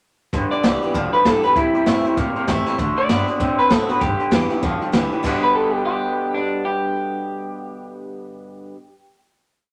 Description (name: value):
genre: rockabilly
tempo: 196 BPM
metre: 4/4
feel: swing 61% on 8ths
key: G major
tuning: A4 = 441 Hz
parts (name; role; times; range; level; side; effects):
- picked swing-style acoustic guitar; accompaniment; 0.3-8.8 s; G2 to G4; -30 LUFS; equal; none
- electric guitar through a small old amp; riff; 0.3-8.8 s; G2 to D4; -26 LUFS; equal; harmonic tremolo
- upright bass; bass; 0.3-8.2 s; F#1 to C3; -32 LUFS; equal; none
- jazz brush drum kit; drums; 0.3-5.3 s; crash cymbal, hi-hat, kick drum, snare drum; -24 LUFS; equal; none
- electric guitar through a small old amp; melody; 0.5-9.1 s; D4 to D5; -22 LUFS; equal; none
room: wet studio reverb, RT60 0.8 s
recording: none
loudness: -19 LUFS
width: mono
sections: 0.3-5.2 A section; 5.2-7.7 final chord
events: none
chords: 0.3 G; 1.6 C; 2.8 D7; 4.0 G